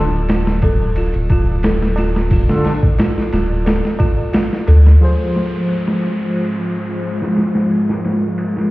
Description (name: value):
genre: trip hop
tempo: 89 BPM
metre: 4/4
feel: swing 53% on 16ths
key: F minor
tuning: A4 = 444 Hz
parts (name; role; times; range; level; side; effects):
- barky tine electric piano; accompaniment; 0.0-8.7 s; D3 to C5; -21 LUFS; equal; overdrive, tremolo, tape echo
- music box; arpeggios; 0.0-5.0 s; F4 to A4; -24 LUFS; right 1 dB; tape echo
- soft dub sub bass; bass; 0.0-5.0 s; D1 to D2; -13 LUFS; equal; none
- tabla; percussion; 0.1-5.0 s; none; -31 LUFS; right 2 dB; none
- boom bap sampler-style drum kit; drums; 0.3-8.7 s; hi-hat, kick drum, ride cymbal, snare drum; -17 LUFS; equal; overdrive, low-pass filter on cymbals, vintage 12-bit sampler grit, low-pass filter on snare, low-pass filter on kick, low-pass filter on hats, low-pass filter on room
- string machine, cellos; sustained chords; 5.0-8.7 s; Ab3 to C5; -19 LUFS; equal; ensemble chorus, vintage 12-bit sampler grit
- downlifter; sound effects; 5.0-8.7 s; none; -32 LUFS; equal; none
room: digital ambience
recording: heard muffled through a wall, stone room reverb, vinyl crackle, EQ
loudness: -13 LUFS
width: side -19 dB against mid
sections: 0.0-5.0 A section; 5.0-8.7 B section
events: filter sweep on tine electric piano 0.0-5.0; filter sweep on string machine 5.0-8.7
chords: 0.0 Dm; 5.0 Fm